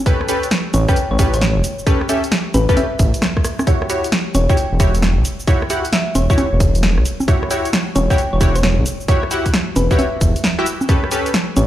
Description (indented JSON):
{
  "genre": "UK garage, two-step garage",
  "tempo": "133 BPM",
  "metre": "4/4",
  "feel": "swing 65% on 16ths",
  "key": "E dorian",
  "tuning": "A4 = 440 Hz",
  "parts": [
    { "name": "punchy chord stab", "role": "stabs", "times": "0.1-11.3 s", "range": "C#4 to F#5", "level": "-22 LUFS", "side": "equal", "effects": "chorus, dub echo" },
    { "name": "electronic kick drum", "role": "drums", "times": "0.1-11.0 s", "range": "none", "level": "-17 LUFS", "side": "equal", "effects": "none" },
    { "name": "punchy analog drum machine", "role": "drums", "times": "0.1-11.7 s", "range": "congas, hi-hat, rim click, shaker, snare drum", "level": "-20 LUFS", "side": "equal", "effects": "none" },
    { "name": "thumb-piano-like synth pluck", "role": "melody", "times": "0.7-11.7 s", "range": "B4 to G5", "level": "-25 LUFS", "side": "left 1 dB", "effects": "chorus, dub echo" },
    { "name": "dark detuned saw bass", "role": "bass", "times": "0.7-11.7 s", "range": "E1 to B1", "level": "-16 LUFS", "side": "equal", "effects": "tube saturation" }
  ],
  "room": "light reverb",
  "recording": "played on a big sound system in a bare room, large studio reverb",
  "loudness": "-14 LUFS",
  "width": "side -13 dB against mid",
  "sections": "0.0-11.7 A section",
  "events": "drum fill 3.2-3.7",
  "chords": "0.0 A9; 3.7 Em69; 10.9 A9",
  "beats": "| 0.06 0.51 0.96 1.42 | 1.87 2.32 2.77 3.22 | 3.67 4.12 4.57 5.02 | 5.47 5.93 6.38 6.83 | 7.28 7.73 8.18 8.63 | 9.08 9.54 9.99 10.44 | 10.89 11.34"
}